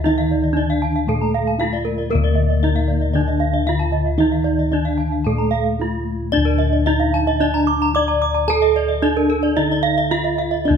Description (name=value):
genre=Balinese gamelan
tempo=113 BPM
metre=4/4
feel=uneven beats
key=D pelog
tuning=A4 = 445 Hz
part: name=gamelan-type bronze metallophone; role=melody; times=0.0-10.8 s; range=Bb3-40c to D5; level=-21 LUFS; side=equal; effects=none
part: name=gamelan-type bronze metallophone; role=accompaniment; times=0.0-6.3 s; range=D3 to Bb3-40c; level=-26 LUFS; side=left 3 dB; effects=none
part: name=gamelan-type bronze metallophone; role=arpeggios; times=0.0-10.8 s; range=A4-45c to D6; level=-25 LUFS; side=left 3 dB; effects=none
part: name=gamelan-type bossed gongs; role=bass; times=0.0-10.8 s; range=D2 to Bb4-40c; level=-20 LUFS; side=left 1 dB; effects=none
part: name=gamelan-type bronze metallophone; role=arpeggios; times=0.3-10.7 s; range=Bb4-40c to D6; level=-24 LUFS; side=right 7 dB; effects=none
room=light reverb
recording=close, detailed microphones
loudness=-16 LUFS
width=side -7 dB against mid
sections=0.0-6.3 A section; 6.3-10.8 B section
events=break 5.5-6.3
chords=none